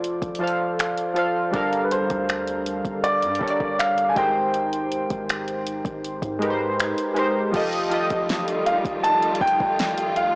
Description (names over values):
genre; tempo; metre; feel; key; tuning
contemporary R&B; 80 BPM; 4/4; straight; unclear; A4 = 440 Hz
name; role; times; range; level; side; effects
warm analog keys; accompaniment; 0.0-10.4 s; F3 to F5; -24 LUFS; equal; chorus
long sustained 808-style bass; bass; 0.0-10.4 s; F1 to Ab2; -38 LUFS; equal; none
smooth R&B drum kit; drums; 0.0-10.3 s; crash cymbal, finger snaps, hi-hat, kick drum, snare drum; -28 LUFS; equal; soft clipping on snare
warm grand piano; melody; 1.8-10.4 s; B4 to A5; -22 LUFS; equal; none
warm symphonic string section; sustained chords; 7.5-10.4 s; Eb3 to F4; -29 LUFS; equal; none
room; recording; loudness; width
light reverb; blown-out, overdriven recording, overdrive, small speaker sound; -20 LUFS; side -26 dB against mid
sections
0.0-7.5 A section; 7.5-10.4 B section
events
none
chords
0.0 Dm7/F; 1.5 Gm7; 4.2 Abmaj7; 7.5 F9